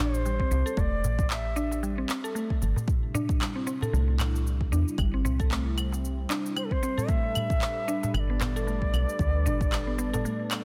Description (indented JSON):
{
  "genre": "organic downtempo",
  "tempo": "114 BPM",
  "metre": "4/4",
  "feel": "swing 58% on 16ths",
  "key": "unclear",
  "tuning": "A4 = 443 Hz",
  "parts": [
    { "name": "bright reedy bansuri", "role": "melody", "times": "0.0-1.8, 6.6-10.6 s", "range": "A4 to E5", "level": "-36 LUFS", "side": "equal", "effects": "tape echo" },
    { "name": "mallet-like synth pluck", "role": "arpeggios", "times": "0.0-10.6 s", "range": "G3 to A4", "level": "-35 LUFS", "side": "equal", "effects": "chorus, digital delay" },
    { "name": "woody FM bass", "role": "bass", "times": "0.0-10.3 s", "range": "E1 to E2", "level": "-30 LUFS", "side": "equal", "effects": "sidechain pumping" },
    { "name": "bronze singing bowl", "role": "texture", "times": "0.0-10.6 s", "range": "G4", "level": "-56 LUFS", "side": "equal", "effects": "none" },
    { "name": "electronic shaker, handclaps and claves", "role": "drums", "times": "0.1-10.6 s", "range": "none", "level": "-37 LUFS", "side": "equal", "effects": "none" },
    { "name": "electronic kick drum", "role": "drums", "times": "0.4-9.7 s", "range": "none", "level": "-30 LUFS", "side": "equal", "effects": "overdrive" },
    { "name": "darbuka", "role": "percussion", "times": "0.5-10.2 s", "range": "none", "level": "-38 LUFS", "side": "equal", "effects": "none" },
    { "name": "warm analog pad", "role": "sustained chords", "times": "2.9-10.6 s", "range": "C3 to B4", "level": "-40 LUFS", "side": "equal", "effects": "chorus, sidechain pumping" }
  ],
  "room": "light reverb, small room ambience",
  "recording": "dense, heavily limited modern master",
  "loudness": "-28 LUFS",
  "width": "mono",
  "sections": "0.0-10.6 A section",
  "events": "none",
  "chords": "0.0 Am; 2.9 C; 7.1 Gadd9"
}